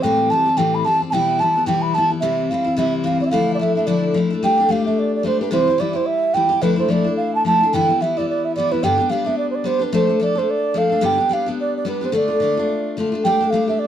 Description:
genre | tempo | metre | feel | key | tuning
celtic folk, Celtic reel | 218 BPM | 4/4 | swing 58% on 8ths | unclear | A4 = 439 Hz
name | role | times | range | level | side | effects
mellow baroque flute | melody | 0.0-13.9 s | B4 to B5 | -19 LUFS | right 3 dB | none
picked steel-string acoustic guitar | accompaniment | 0.0-13.9 s | G2 to A4 | -19 LUFS | left 3 dB | none
room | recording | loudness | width
moderate studio ambience, RT60 0.5 s | dark, warm production | -16 LUFS | side -10 dB against mid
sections
0.0-4.4 A section; 4.4-13.2 B section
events
none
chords
0.0 Am7; 1.1 Em/B; 2.2 C; 3.3 Dmadd9; 4.4 Gsus2; 5.5 C; 6.6 Dmadd9; 7.7 G6; 8.8 G; 9.9 Dm/F; 11.0 G; 12.1 Dm; 13.2 Gsus2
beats
| 0.03 0.30 0.58 0.85 | 1.13 1.40 1.68 1.95 | 2.23 2.50 2.78 3.05 | 3.33 3.60 3.88 4.15 | 4.43 4.70 4.98 5.25 | 5.53 5.80 6.08 6.35 | 6.63 6.90 7.18 7.45 | 7.73 8.00 8.28 8.55 | 8.83 9.10 9.38 9.65 | 9.93 10.20 10.48 10.75 | 11.03 11.30 11.58 11.85 | 12.13 12.40 12.68 12.96 | 13.23 13.51 13.78

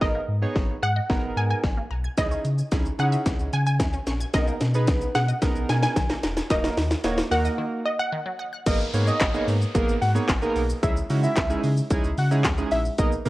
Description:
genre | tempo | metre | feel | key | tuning
dance-pop | 111 BPM | 4/4 | straight | G# minor | A4 = 440 Hz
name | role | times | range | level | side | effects
wide unison pluck | melody | 0.0-8.4 s | D#5 to G#5 | -29 LUFS | equal | digital delay
chorused retro synth keys | accompaniment | 0.0-13.3 s | G#3 to C#5 | -28 LUFS | right 3 dB | sidechain pumping
resonant blip pluck | arpeggios | 0.0-8.6 s | D#3 to G#6 | -37 LUFS | equal | phaser, sidechain pumping, digital delay
sub bass with octave | bass | 0.0-13.3 s | D#1 to C#3 | -25 LUFS | equal | sidechain pumping
house drum kit | drums | 0.0-13.3 s | crash cymbal, handclaps, hi-hat, kick drum, shaker, snare drum | -25 LUFS | equal | overdrive
fat analog lead | melody | 8.7-13.1 s | D#5 to F#5 | -29 LUFS | equal | phaser, digital delay
downlifter | sound effects | 8.7-13.0 s | none | -39 LUFS | left 1 dB | none
room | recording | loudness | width
digital ambience | worn, warbling old tape, cassette tape, warbly pitch drift | -21 LUFS | side -18 dB against mid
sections
0.0-8.7 A section; 8.7-13.3 B section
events
build-up 0.0-8.7; drum fill 0.0-7.6; break 7.6-8.7; drop 8.7-13.3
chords
0.0 G#madd9; 2.2 C#madd9; 4.3 G#madd9/B; 6.5 D#m; 8.7 G#madd9; 10.8 C#madd9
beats
| 0.02 0.56 1.10 1.64 | 2.18 2.72 3.26 3.80 | 4.34 4.88 5.42 5.96 | 6.50 7.04 7.58 8.12 | 8.66 9.21 9.75 10.29 | 10.83 11.37 11.91 12.45 | 12.99

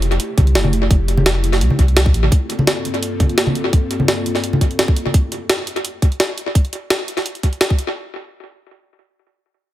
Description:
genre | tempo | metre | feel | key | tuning
liquid drum and bass | 170 BPM | 4/4 | swing 53% on 16ths | unclear | A4 = 442 Hz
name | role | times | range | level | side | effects
airy breathy pad | sustained chords | 0.0-5.1 s | F2 to A4 | -24 LUFS | left 1 dB | chorus, sidechain pumping
warm sub bass | bass | 0.0-2.3 s | F1 to C2 | -16 LUFS | equal | none
jungle sampler-style drum kit | drums | 0.0-7.9 s | hi-hat, snare drum | -19 LUFS | equal | tape echo
electronic kick drum | drums | 0.4-7.8 s | none | -14 LUFS | equal | none
congas | percussion | 0.4-5.1 s | none | -22 LUFS | equal | tape echo
room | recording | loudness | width
little or no reverb | echo-heavy mix | -15 LUFS | side -14 dB against mid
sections
0.0-8.0 A section; 8.0-9.7 B section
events
none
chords
0.0 Fmaj9; 2.3 Gm11; 5.0 Fmaj9; 8.0 N.C.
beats
0.20 0.55 | 0.90 1.26 1.61 1.96 | 2.32 2.67 3.02 3.38 | 3.73 4.08 4.43 4.79 | 5.14 5.49 5.85 6.20 | 6.55 6.90 7.26 7.61

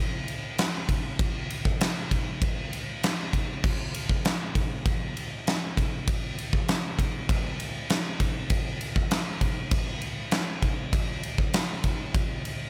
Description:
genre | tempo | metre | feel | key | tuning
rock | 99 BPM | 4/4 | straight | none | none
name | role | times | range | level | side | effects
huge arena drum kit | drums | 0.3-12.6 s | crash cymbal, kick drum, ride cymbal, snare drum | -28 LUFS | equal | none
room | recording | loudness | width
little or no reverb | none | -28 LUFS | mono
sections
0.0-12.7 A section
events
none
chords
none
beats
0.57 | 1.19 1.80 2.41 3.02 | 3.63 4.24 4.85 5.46 | 6.07 6.67 7.28 7.89 | 8.50 9.11 9.71 10.32 | 10.93 11.54 12.14

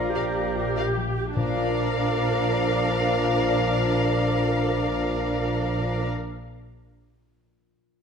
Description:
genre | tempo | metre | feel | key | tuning
classical, slow romantic movement for symphony orchestra | 52 BPM | 4/4 | rubato | Bb major | A4 = 441 Hz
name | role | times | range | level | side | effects
bright silver concert flute | second line | 0.0-6.1 s | F5 | -34 LUFS | left 4 dB | none
clear clarinet | second line | 0.0-6.1 s | Bb4 to D5 | -33 LUFS | equal | none
clear cor anglais | second line | 0.0-6.1 s | D5 | -35 LUFS | right 2 dB | none
mellow bassoon | accompaniment | 0.0-6.1 s | F3 | -31 LUFS | right 3 dB | none
rich studio viola section | accompaniment | 0.0-6.1 s | D4 to G4 | -31 LUFS | right 2 dB | none
concert harp | arpeggios | 0.0-6.4 s | Bb2 to F5 | -36 LUFS | left 9 dB | none
warm chamber cello section | bass | 0.0-6.1 s | Bb4 | -32 LUFS | right 3 dB | none
rich chamber violin section | melody | 0.2-6.1 s | F5 | -33 LUFS | left 2 dB | none
rich studio violin section | second line | 0.2-6.1 s | D5 | -34 LUFS | left 5 dB | none
dark studio double bass section | bass | 0.2-6.1 s | Bb1 | -29 LUFS | right 1 dB | none
mellow French horn section | sustained chords | 1.4-6.1 s | F3 to D4 | -30 LUFS | left 5 dB | none
timpani | percussion | 1.4-6.1 s | Bb2 | -32 LUFS | left 1 dB | none
room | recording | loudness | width
wet recital hall reverb, RT60 1.4 s | none | -22 LUFS | side -6 dB against mid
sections
0.0-1.4 A section; 1.4-6.0 B section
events
slowing down 0.0-1.4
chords
0.0 Bb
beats
0.15 | 1.36 2.49 3.65 4.81

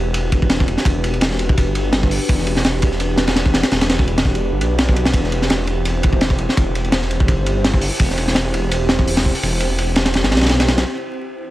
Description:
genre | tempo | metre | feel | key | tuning
drum and bass, jungle | 168 BPM | 4/4 | swing 55% on 16ths | E minor | A4 = 440 Hz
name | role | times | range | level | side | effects
warbly tape-like pad | sustained chords | 0.0-11.5 s | E3 to B4 | -24 LUFS | equal | chorus, built-in reverb
detuned saw bass | bass | 0.0-10.8 s | E1 to B1 | -20 LUFS | equal | none
crunchy breakbeat drum kit | drums | 0.1-10.9 s | hi-hat, kick drum, ride cymbal, snare drum | -17 LUFS | equal | none
room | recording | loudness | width
studio ambience | vinyl crackle | -15 LUFS | side -16 dB against mid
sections
0.0-10.9 A section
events
none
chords
0.0 Em7; 5.1 C/E; 10.9 Em7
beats
0.14 0.50 | 0.86 1.22 1.57 1.93 | 2.29 2.64 3.00 3.36 | 3.71 4.07 4.43 4.79 | 5.14 5.50 5.86 6.21 | 6.57 6.93 7.29 7.64 | 8.00 8.36 8.71 9.07 | 9.43 9.79 10.14 10.50 | 10.86 11.21

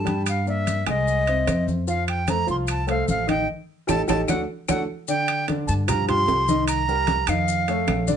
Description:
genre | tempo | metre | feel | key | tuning
Afro-Cuban jazz | 150 BPM | 4/4 | straight | unclear | A4 = 440 Hz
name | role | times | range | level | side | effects
breathy bright silver concert flute | melody | 0.0-8.1 s | Eb5 to C6 | -24 LUFS | right 1 dB | none
warm baby grand piano | accompaniment | 0.0-8.2 s | D3 to Ab5 | -26 LUFS | left 1 dB | none
upright bass | bass | 0.0-8.2 s | A1 to G2 | -26 LUFS | equal | none
congas | percussion | 0.1-8.2 s | none | -30 LUFS | left 2 dB | none
maracas | percussion | 0.1-8.2 s | none | -36 LUFS | left 7 dB | none
timbales | percussion | 0.1-8.1 s | none | -30 LUFS | right 10 dB | none
claves | percussion | 0.3-8.1 s | none | -35 LUFS | left 7 dB | none
room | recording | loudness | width
moderate studio reverb, RT60 0.5 s | nothing above 10.3 kHz | -20 LUFS | side -8 dB against mid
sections
0.0-5.1 A section; 5.1-8.2 B section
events
band accent 3.5-5.1; drum fill 3.9-5.1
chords
0.3 Gm; 1.1 Caug; 1.9 F; 3.5 Gsus2/A; 4.3 D; 5.1 G5; 6.7 Cm7; 7.5 Faug7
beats
| 0.27 0.67 1.07 1.48 | 1.88 2.28 2.68 3.08 | 3.49 3.89 4.29 4.69 | 5.09 5.49 5.89 6.29 | 6.69 7.09 7.48 7.88

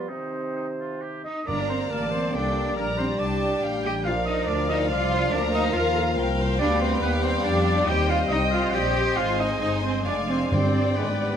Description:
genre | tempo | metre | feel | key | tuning
quick classical-period movement for symphony orchestra | 128-143 BPM | 3/4 | rubato | G minor, C minor from 6.6 s | A4 = 441 Hz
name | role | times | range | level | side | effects
bright clarinet | second line | 0.0-11.4 s | B3 to G5 | -33 LUFS | equal | none
concert flute | second line | 0.0-11.4 s | Bb4 to D5 | -33 LUFS | equal | none
warm oboe | second line | 0.0-11.4 s | Eb4 to G5 | -33 LUFS | right 1 dB | none
warm bassoon | accompaniment | 0.0-11.4 s | C3 to Bb3 | -32 LUFS | right 1 dB | none
dark French horn section | sustained chords | 0.0-11.4 s | Eb3 to D4 | -33 LUFS | left 2 dB | none
rich studio cello section | bass | 1.3-11.4 s | Ab3 to G4 | -28 LUFS | right 1 dB | none
rich chamber violin section | melody | 1.5-11.4 s | F5 to Bb5 | -34 LUFS | left 3 dB | none
rich chamber violin section | second line | 1.5-11.4 s | C5 to G5 | -33 LUFS | right 1 dB | none
rich chamber viola section | accompaniment | 1.5-11.4 s | G4 to Eb5 | -33 LUFS | equal | none
rich chamber double bass section | bass | 1.5-11.4 s | F1 to F2 | -28 LUFS | left 1 dB | none
timpani | percussion | 1.5-2.1, 10.5-11.2 s | G2 | -29 LUFS | right 1 dB | none
room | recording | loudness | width
moderate stone room reverb, RT60 1.1 s | none | -22 LUFS | side -8 dB against mid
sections
0.0-1.5 A section; 1.5-11.4 B section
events
none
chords
0.1 Cm; 1.5 Gm; 2.8 Gm/Bb; 4.1 Bb; 5.3 Bb/D; 6.6 G7/D; 7.9 Cm; 9.2 Ab; 10.1 Ddim/F; 10.5 G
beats
| 0.10 0.56 1.02 | 1.48 1.92 2.35 | 2.78 3.21 3.63 | 4.06 4.49 4.91 | 5.33 5.76 6.18 | 6.60 7.02 7.45 | 7.88 8.31 8.74 | 9.18 9.62 10.06 | 10.52 10.98

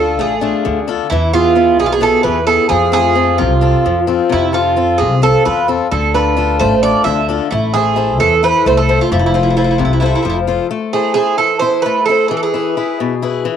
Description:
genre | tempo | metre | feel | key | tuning
greek folk, Greek bouzouki band | 262 BPM (eighths) | 7/8 | straight | unclear | A4 = 438 Hz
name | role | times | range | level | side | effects
Greek bouzouki | melody | 0.0-13.6 s | E4 to E5 | -14 LUFS | right 6 dB | cassette tape
picked swing-style acoustic guitar | accompaniment | 0.0-13.6 s | B2 to E5 | -16 LUFS | left 8 dB | none
upright bass | bass | 0.0-10.6 s | F1 to F2 | -18 LUFS | equal | none
room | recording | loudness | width
light reverb, small room reverb | home recording on cassette | -11 LUFS | side -8 dB against mid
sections
0.0-10.7 A section; 10.7-13.6 B section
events
none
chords
0.0 Dm; 1.1 E; 2.7 F; 5.9 Dm; 7.5 Am; 9.1 F; 10.7 Am; 12.3 E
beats
0.19 0.42 0.65 0.88 | 1.11 1.34 1.57 1.79 2.02 2.25 2.48 | 2.71 2.94 3.17 3.40 3.62 3.85 4.08 | 4.31 4.54 4.77 5.00 5.22 5.45 5.68 | 5.91 6.14 6.37 6.59 6.82 7.05 7.28 | 7.51 7.74 7.97 8.20 8.42 8.65 8.88 | 9.11 9.34 9.56 9.79 10.02 10.25 10.48 | 10.71 10.94 11.16 11.39 11.62 11.85 12.08 | 12.31 12.54 12.77 12.99 13.22 13.45

